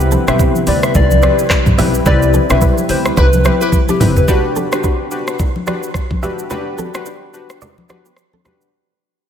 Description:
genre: afrobeats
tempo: 108 BPM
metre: 4/4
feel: swing 58% on 16ths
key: G major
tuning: A4 = 440 Hz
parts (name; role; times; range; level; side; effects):
- warm analog keys; accompaniment; 0.0-8.7 s; C4 to B4; -20 LUFS; left 2 dB; chorus
- glassy FM pad; sustained chords; 0.0-4.2 s; C3 to B4; -21 LUFS; left 2 dB; ensemble chorus, built-in reverb
- upright bass; bass; 0.0-4.2 s; F#1 to D2; -16 LUFS; equal; none
- afro-pop drum kit; drums; 0.0-8.7 s; handclaps, hi-hat, kick drum, rim click, shaker, toms; -16 LUFS; equal; none
- direct-recorded clean electric guitar; riff; 0.1-8.5 s; B3 to E5; -26 LUFS; right 6 dB; wide subtle chorus, ping-pong delay
- congas; percussion; 0.1-8.6 s; none; -22 LUFS; left 2 dB; none
- soft struck synth lead; melody; 0.3-4.3 s; G4 to E5; -19 LUFS; left 1 dB; chorus, ping-pong delay
- warm horn section; second line; 3.2-3.8 s; E4 to B4; -23 LUFS; left 1 dB; ping-pong delay
room: moderate plate reverb, RT60 2.0 s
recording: dreamy mix soaked in reverb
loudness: -11 LUFS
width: side -8 dB against mid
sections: 0.0-4.3 A section; 4.3-8.7 B section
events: band accent 2.1-4.3; drum fill 3.7-4.3; fade-out 4.3-8.7; break 7.6-8.7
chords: 0.0 G; 4.3 Gmaj7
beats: 0.39 0.95 1.50 | 2.06 2.62 3.17 3.73 | 4.28 4.84 5.39 5.95 | 6.50 7.06 7.62 8.17

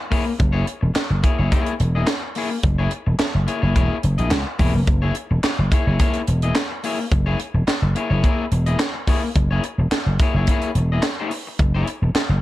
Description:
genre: funk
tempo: 107 BPM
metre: 4/4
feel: straight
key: F# mixolydian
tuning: A4 = 439 Hz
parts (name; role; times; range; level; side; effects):
- electric guitar at the edge of break-up; accompaniment; 0.1-12.3 s; A#3 to D#5; -26 LUFS; left 4 dB; spring reverb
- tight funk drum kit; drums; 0.1-12.3 s; handclaps, hi-hat, kick drum, snare drum; -21 LUFS; equal; none
- vintage slap bass; bass; 0.4-12.4 s; E1 to C#2; -19 LUFS; equal; none
room: light reverb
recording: dark, warm production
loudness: -18 LUFS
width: side -16 dB against mid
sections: 0.0-12.4 A section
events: none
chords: 0.0 F#9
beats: | 0.40 0.96 1.52 2.08 | 2.64 3.20 3.76 4.32 | 4.88 5.44 6.00 6.56 | 7.12 7.68 8.24 8.80 | 9.36 9.91 10.47 11.03 | 11.59 12.15

